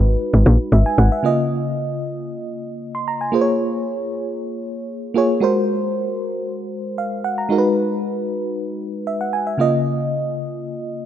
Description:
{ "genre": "amapiano", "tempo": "115 BPM", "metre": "4/4", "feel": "straight", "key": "Db major", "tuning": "A4 = 438 Hz", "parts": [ { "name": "FM electric piano with auto-pan", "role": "accompaniment", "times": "0.0-11.1 s", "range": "Db3 to C6", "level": "-20 LUFS", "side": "equal", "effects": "none" }, { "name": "tight log drum bass", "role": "bass", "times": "0.0-1.1 s", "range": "Ab1 to Bb1", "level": "-12 LUFS", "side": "equal", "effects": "none" } ], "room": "light reverb, digital ambience", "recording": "dark, warm production", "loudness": "-18 LUFS", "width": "side -10 dB against mid", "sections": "0.0-1.2 A section; 1.2-11.1 B section", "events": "drop 0.0-1.2", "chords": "0.0 Abm7; 1.2 Db69; 3.3 Bbm7; 5.4 Ab9; 7.5 Abm7; 9.6 Db69" }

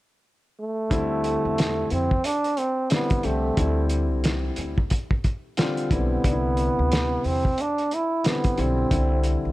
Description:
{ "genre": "hip hop, jazz-hop", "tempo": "90 BPM", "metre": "4/4", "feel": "swing 61% on 16ths", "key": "unclear", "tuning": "A4 = 439 Hz", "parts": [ { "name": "warm trombone", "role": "melody", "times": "0.6-9.3 s", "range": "A3 to E4", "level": "-25 LUFS", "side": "right 2 dB", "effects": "none" }, { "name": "dark baby grand piano", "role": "accompaniment", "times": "0.9-9.5 s", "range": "C3 to G4", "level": "-28 LUFS", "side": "left 2 dB", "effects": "none" }, { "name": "upright bass", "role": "bass", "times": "0.9-9.5 s", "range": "B1 to F2", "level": "-26 LUFS", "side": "equal", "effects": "none" }, { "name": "cloth-damped thuddy drum kit", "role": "drums", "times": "0.9-9.4 s", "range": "hi-hat, kick drum, snare drum", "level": "-24 LUFS", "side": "equal", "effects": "none" } ], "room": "little or no reverb", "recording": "none", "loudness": "-21 LUFS", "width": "side -17 dB against mid", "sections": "0.9-9.5 A section", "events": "none", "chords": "0.0 N.C.; 0.9 D7sus2; 6.2 Cmaj7" }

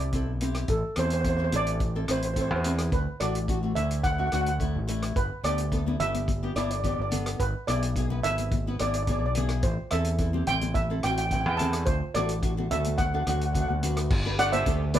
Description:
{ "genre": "calypso", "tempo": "107 BPM", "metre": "4/4", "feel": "straight", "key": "G major", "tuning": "A4 = 440 Hz", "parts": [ { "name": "steel pan", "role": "melody", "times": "0.0-15.0 s", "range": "A4 to A5", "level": "-29 LUFS", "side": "right 2 dB", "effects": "none" }, { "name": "nylon-string guitar", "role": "accompaniment", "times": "0.0-15.0 s", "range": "A3 to C5", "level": "-33 LUFS", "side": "left 1 dB", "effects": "none" }, { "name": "growling fingered electric bass", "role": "bass", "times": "0.0-15.0 s", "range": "G1 to E2", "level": "-28 LUFS", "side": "equal", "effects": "overdrive" }, { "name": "warm soul drum kit", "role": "drums", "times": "0.1-15.0 s", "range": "crash cymbal, hi-hat, kick drum, rim click", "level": "-31 LUFS", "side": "equal", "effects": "none" }, { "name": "congas", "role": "percussion", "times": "5.9-15.0 s", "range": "none", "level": "-35 LUFS", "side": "left 5 dB", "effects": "none" } ], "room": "moderate studio reverb, RT60 0.7 s", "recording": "band playing live in one room", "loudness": "-24 LUFS", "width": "side -11 dB against mid", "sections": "0.0-14.1 A section", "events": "none", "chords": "0.0 Cadd9; 0.7 Am; 2.9 D; 5.2 G; 7.4 E7/G#; 9.6 Am7; 11.9 D; 14.1 G5" }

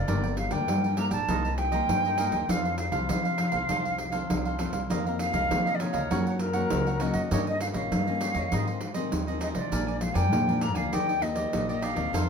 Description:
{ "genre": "samba and choro", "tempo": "100 BPM", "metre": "4/4", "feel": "straight", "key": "unclear", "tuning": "A4 = 440 Hz", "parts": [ { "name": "jazz flute", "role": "melody", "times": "0.0-12.3 s", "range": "Bb4 to Bb5", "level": "-30 LUFS", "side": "equal", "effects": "none" }, { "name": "cavaquinho", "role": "accompaniment", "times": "0.0-12.3 s", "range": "D4 to Ab5", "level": "-35 LUFS", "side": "right 4 dB", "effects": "none" }, { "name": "nylon-string guitar", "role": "accompaniment", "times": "0.0-12.3 s", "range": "F2 to G4", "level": "-33 LUFS", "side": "left 6 dB", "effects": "none" }, { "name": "upright bass", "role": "bass", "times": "0.0-12.3 s", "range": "G1 to G3", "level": "-30 LUFS", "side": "equal", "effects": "none" }, { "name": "pandeiro", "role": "percussion", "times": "0.1-12.3 s", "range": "none", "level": "-32 LUFS", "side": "right 3 dB", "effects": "none" } ], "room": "moderate studio reverb, RT60 0.5 s", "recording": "minimal, uncompressed stereo recording", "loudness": "-25 LUFS", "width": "side -6 dB against mid", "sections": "0.0-12.3 A section", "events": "none", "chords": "0.1 Gm; 1.3 Cm7; 2.5 F; 4.9 F7sus4; 6.1 Gb; 7.3 Eb7; 8.5 Ab; 9.7 Bb7; 10.9 Ebmaj7" }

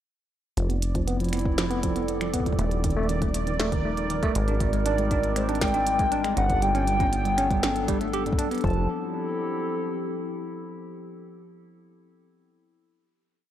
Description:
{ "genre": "IDM", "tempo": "119 BPM", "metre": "4/4", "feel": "straight", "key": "unclear", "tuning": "A4 = 440 Hz", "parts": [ { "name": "warbly tape-like pad", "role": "sustained chords", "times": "0.9-10.6 s", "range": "F3 to Bb4", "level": "-31 LUFS", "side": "left 1 dB", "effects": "chorus, built-in reverb" }, { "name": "bell-like tine electric piano", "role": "arpeggios", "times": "0.6-8.9 s", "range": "G2 to G4", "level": "-30 LUFS", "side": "right 2 dB", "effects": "medium stereo tremolo, low-pass filter, tape echo" }, { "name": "deep acid bass", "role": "bass", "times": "0.6-8.9 s", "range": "Eb1 to Ab1", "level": "-28 LUFS", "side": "equal", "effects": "none" }, { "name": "glitchy drum kit", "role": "drums", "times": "0.6-8.8 s", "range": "finger snaps, hi-hat, snare drum", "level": "-32 LUFS", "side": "equal", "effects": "studio reverb" }, { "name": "bubbling stepped-filter texture", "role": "texture", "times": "0.6-8.7 s", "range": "D5", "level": "-35 LUFS", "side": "right 6 dB", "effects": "chorus, built-in reverb" }, { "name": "electronic kick drum", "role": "drums", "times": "0.9-8.7 s", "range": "none", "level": "-28 LUFS", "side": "equal", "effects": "studio reverb" }, { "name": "warbly nostalgic lead", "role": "melody", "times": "4.9-8.9 s", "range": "C5 to A5", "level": "-27 LUFS", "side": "left 1 dB", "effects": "lush chorus, tape echo" } ], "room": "light reverb", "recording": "dry, gritty hardware recording, transformer saturation", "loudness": "-23 LUFS", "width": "side -11 dB against mid", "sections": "0.6-8.6 groove; 8.6-10.7 final chord", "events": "filter sweep on tine electric piano 0.6-8.6", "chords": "0.6 Fmaj9; 2.6 Ebmaj9; 4.4 Abmaj9; 6.4 Gmaj9; 8.6 Fmaj9" }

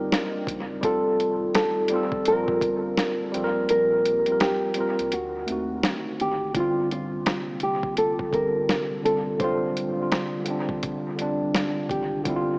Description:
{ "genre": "lo-fi hip hop", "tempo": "84 BPM", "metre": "4/4", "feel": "swing 62% on 16ths", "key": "G minor", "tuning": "A4 = 440 Hz", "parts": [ { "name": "nylon-string guitar", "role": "melody", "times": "0.0-12.6 s", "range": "F4 to C5", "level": "-24 LUFS", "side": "equal", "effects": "dub echo" }, { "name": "tine electric piano", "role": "accompaniment", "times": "0.0-12.6 s", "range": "D3 to Bb4", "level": "-27 LUFS", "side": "equal", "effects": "medium stereo tremolo, dub echo" }, { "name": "dark analog pad", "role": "sustained chords", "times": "0.0-12.6 s", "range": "C3 to F#5", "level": "-36 LUFS", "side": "equal", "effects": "none" }, { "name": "soft dub sub bass", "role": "bass", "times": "0.0-12.6 s", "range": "D1 to Eb2", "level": "-42 LUFS", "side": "equal", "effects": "none" }, { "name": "lo-fi sampler-style drum kit", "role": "drums", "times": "0.1-12.5 s", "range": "hi-hat, kick drum, snare drum", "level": "-28 LUFS", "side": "equal", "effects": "overdrive, dub echo" } ], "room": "moderate echo chamber reverb, RT60 2.5 s", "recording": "echo-heavy mix, small speaker sound", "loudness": "-22 LUFS", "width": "side -30 dB against mid", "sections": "0.0-6.5 A section; 6.5-12.6 B section", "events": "kick muted 3.7-6.5", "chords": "0.0 Cm9; 0.8 F9; 2.3 Bb6; 3.3 Gm7/Bb; 5.1 D7b9; 6.5 Gm7; 9.4 Dm7" }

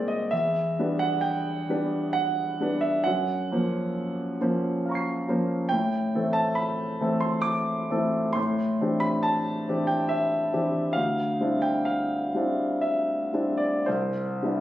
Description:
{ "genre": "classical, impressionist solo piano", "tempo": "55-70 BPM", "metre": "3/4", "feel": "rubato", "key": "unclear", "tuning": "A4 = 440 Hz", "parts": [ { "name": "warm concert grand piano", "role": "solo", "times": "0.0-14.6 s", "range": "C2 to B#6", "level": "-24 LUFS", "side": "equal", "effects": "none" } ], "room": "light reverb", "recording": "recorded on a phone in the room, studio reverb, compression", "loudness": "-24 LUFS", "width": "side -13 dB against mid", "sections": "0.0-14.6 A section", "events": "none", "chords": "0.3 Em7; 3.1 F#maj7#11; 5.7 Am; 11.0 Dm11; 13.9 Cmaj9" }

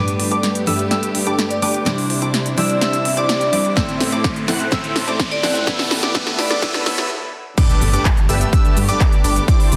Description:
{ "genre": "EDM, festival progressive house", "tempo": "126 BPM", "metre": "4/4", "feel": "straight", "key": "G major", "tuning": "A4 = 440 Hz", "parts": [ { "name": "picked steel-string acoustic guitar", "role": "accompaniment", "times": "0.0-7.1 s", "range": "G2 to C5", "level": "-26 LUFS", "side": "equal", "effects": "sidechain pumping, delay" }, { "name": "clear studio string section", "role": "sustained chords", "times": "0.0-9.8 s", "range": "E3 to G4", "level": "-32 LUFS", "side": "equal", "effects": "sidechain pumping" }, { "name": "plucky unison lead", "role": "arpeggios", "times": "0.0-9.8 s", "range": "D6 to F#6", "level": "-28 LUFS", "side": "equal", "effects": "subtle chorus, cassette tape, sidechain pumping, delay" }, { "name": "supersaw stab", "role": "riff", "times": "0.0-9.8 s", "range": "B3 to F#5", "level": "-27 LUFS", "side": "equal", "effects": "sidechain pumping, low-pass filter, delay" }, { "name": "riser and impact", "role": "sound effects", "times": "3.1-9.5 s", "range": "none", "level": "-30 LUFS", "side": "equal", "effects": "none" }, { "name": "big-room dance drum kit", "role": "drums", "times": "0.1-9.8 s", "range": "crash cymbal, handclaps, hi-hat, shaker, snare drum", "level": "-25 LUFS", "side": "equal", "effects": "overdrive" }, { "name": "detuned saw bass", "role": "bass", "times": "0.2-9.8 s", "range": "E1 to A2", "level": "-26 LUFS", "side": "equal", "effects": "none" }, { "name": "vibraphone with hard mallets", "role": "melody", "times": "1.5-6.6 s", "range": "D5 to E5", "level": "-26 LUFS", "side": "equal", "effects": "delay" }, { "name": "electronic kick drum", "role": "drums", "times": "3.8-9.6 s", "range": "none", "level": "-19 LUFS", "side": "equal", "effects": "overdrive" } ], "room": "moderate digital room reverb, RT60 1.1 s, digital ambience", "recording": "dense, heavily limited modern master, high-pass filter", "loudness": "-18 LUFS", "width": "mono", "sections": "0.0-7.6 A section; 7.6-9.8 B section", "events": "build-up 0.0-7.6; drum fill 0.0-7.1; filter sweep on supersaw synth 0.0-7.6; filter sweep 0.0-7.6; riser 3.1-7.1; stop 7.1-7.6; drop 7.6-9.8; impact 7.6-9.5", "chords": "0.0 Gadd9; 1.9 Cadd9; 3.8 Am; 5.7 Em7; 7.6 Gadd9" }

